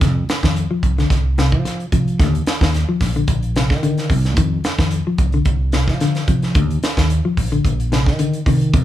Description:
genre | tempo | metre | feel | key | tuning
afrobeat | 110 BPM | 4/4 | swing 54% on 16ths | unclear | A4 = 440 Hz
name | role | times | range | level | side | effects
semi-hollow electric guitar | arpeggios | 0.0-8.8 s | C3 to F3 | -20 LUFS | left 3 dB | none
fingered electric bass | bass | 0.0-8.8 s | Bb1 to F3 | -20 LUFS | right 1 dB | none
tight funk drum kit | drums | 0.0-8.8 s | hi-hat, kick drum, snare drum | -19 LUFS | right 1 dB | none
room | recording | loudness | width
moderate large studio reverb, RT60 1.1 s | band playing live in one room | -15 LUFS | side -13 dB against mid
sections
0.0-8.8 A section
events
none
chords
0.0 F5; 2.2 Eb5; 4.4 F5; 6.6 Eb5

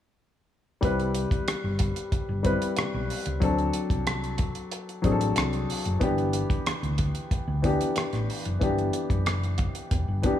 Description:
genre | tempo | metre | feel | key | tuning
lush 1970s-style soul | 92 BPM | 4/4 | straight | G major | A4 = 439 Hz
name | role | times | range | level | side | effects
warm baby grand piano | accompaniment | 0.8-10.4 s | E3 to B4 | -28 LUFS | left 3 dB | none
hollow-body short-scale fingered electric bass | bass | 0.8-10.2 s | E1 to D2 | -29 LUFS | equal | none
damped 70s drum kit | drums | 0.8-10.4 s | hi-hat, kick drum, rim click | -28 LUFS | equal | none
room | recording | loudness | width
light reverb, studio reverb | small room ambience | -24 LUFS | side -11 dB against mid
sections
0.8-10.4 A section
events
none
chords
0.8 Cmaj7; 3.4 D7; 6.0 G6

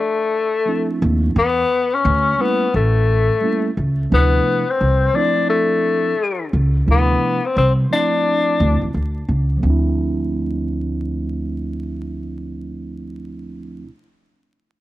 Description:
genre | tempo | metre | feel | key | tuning
hip hop, jazz-hop | 87 BPM | 4/4 | swing 63% on 16ths | D dorian | A4 = 441 Hz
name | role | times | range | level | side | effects
breathy tenor saxophone | melody | 0.0-8.9 s | A3 to D4 | -18 LUFS | left 4 dB | cassette tape
mellow tine electric piano | accompaniment | 0.7-13.9 s | C3 to E4 | -23 LUFS | right 4 dB | fast stereo tremolo, cassette tape
upright bass | bass | 1.0-13.8 s | A1 to E2 | -18 LUFS | equal | none
room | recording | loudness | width
light reverb, studio reverb | home recording on cassette, vinyl crackle | -16 LUFS | side -15 dB against mid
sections
0.0-9.6 A section; 9.6-12.4 B section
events
none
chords
0.0 Dm9; 1.4 Em7; 2.7 A7b9; 4.1 Dm9

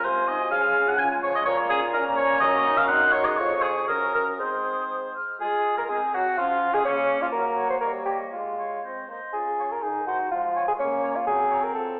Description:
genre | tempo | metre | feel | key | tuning
quick classical-period movement for wind quintet | 124 BPM | 2/4 | rubato | Db major | A4 = 441 Hz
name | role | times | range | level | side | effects
silver concert flute | melody | 0.0-11.6 s | Db4 to F6 | -34 LUFS | equal | none
warm oboe | second line | 0.0-11.6 s | Db4 to Ab5 | -27 LUFS | equal | none
clear French horn | accompaniment | 0.0-12.0 s | Db3 to Ab4 | -34 LUFS | equal | none
warm clarinet | accompaniment | 0.0-12.0 s | F3 to Bb4 | -38 LUFS | equal | none
mellow bassoon | bass | 0.0-12.0 s | F2 to C5 | -29 LUFS | equal | none
room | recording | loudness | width
wet recital hall reverb, RT60 1.4 s | recorded in a church or concert hall, telephone sound | -24 LUFS | mono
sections
0.0-5.4 A section; 5.4-12.0 B section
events
none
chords
0.0 Ab7/C; 0.5 Db; 1.5 Bbm; 2.4 Ebm/Gb; 2.9 Ab7/Gb; 3.4 Db/F; 3.9 Ebm7/Gb; 4.4 Ab; 5.4 Fmadd11/Ab; 5.9 Ab7; 6.4 Db/F; 6.9 Bbm/Db; 7.3 Gb; 7.8 Eb7/G; 8.3 Db/Ab; 8.8 Ab; 9.3 Db; 9.8 Cdim/Eb (rootless); 10.3 Db/F (rootless); 10.8 Bbm; 11.3 Gb

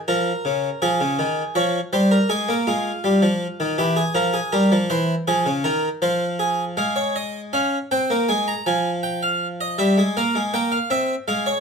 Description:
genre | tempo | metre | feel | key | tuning
classical, baroque-style two-part invention for harpsichord | 80 BPM | 4/4 | straight | F minor from 6.8 s | A4 = 440 Hz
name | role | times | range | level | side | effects
harpsichord | solo | 0.1-11.6 s | Db3 to Bb5 | -19 LUFS | equal | none
room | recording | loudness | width
moderate large studio reverb, RT60 0.8 s | none | -19 LUFS | side -6 dB against mid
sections
0.0-6.8 A section; 6.8-11.6 B section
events
none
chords
0.0 Bbm; 0.8 Fm; 2.3 Fm/Ab; 3.8 C7/E; 5.3 Fm; 6.8 Fm/Ab; 8.3 Fm; 9.8 C7/G

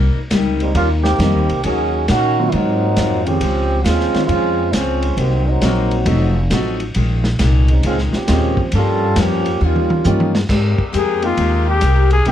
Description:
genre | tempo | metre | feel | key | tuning
jazz, big band swing | 136 BPM | 4/4 | swing 66% on 8ths | unclear | A4 = 440 Hz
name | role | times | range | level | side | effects
picked steel-string acoustic guitar | accompaniment | 0.0-12.3 s | G2 to Bb4 | -23 LUFS | left 5 dB | none
upright bass | bass | 0.0-12.3 s | F1 to Bb2 | -17 LUFS | equal | none
vintage drum kit | drums | 0.3-12.3 s | crash cymbal, hi-hat, kick drum, ride cymbal, snare drum, toms | -23 LUFS | equal | none
mellow trombone section | second line | 0.6-10.4 s | Eb3 to A4 | -18 LUFS | right 2 dB | none
warm upright piano | accompaniment | 1.2-12.3 s | Eb3 to G4 | -21 LUFS | right 1 dB | none
bright saxophone section | sustained chords | 10.5-12.3 s | C3 to G4 | -27 LUFS | left 1 dB | none
breathy trumpet | melody | 11.0-12.3 s | F4 to Ab4 | -18 LUFS | left 3 dB | plate reverb
room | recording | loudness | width
light reverb | dark, warm production | -14 LUFS | side -10 dB against mid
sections
0.0-10.5 A section; 10.5-12.3 B section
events
trombone section solo 0.0-10.5; drum fill 9.6-10.5; trumpet solo 10.5-12.3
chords
0.0 Cm7; 1.6 Ebm7; 2.5 Ab13; 3.4 Dbmaj7; 5.2 Cm7b5; 6.1 F7b9; 7.0 Bbm11; 8.7 Gm7b5; 9.6 Eb9; 10.5 Abmaj9

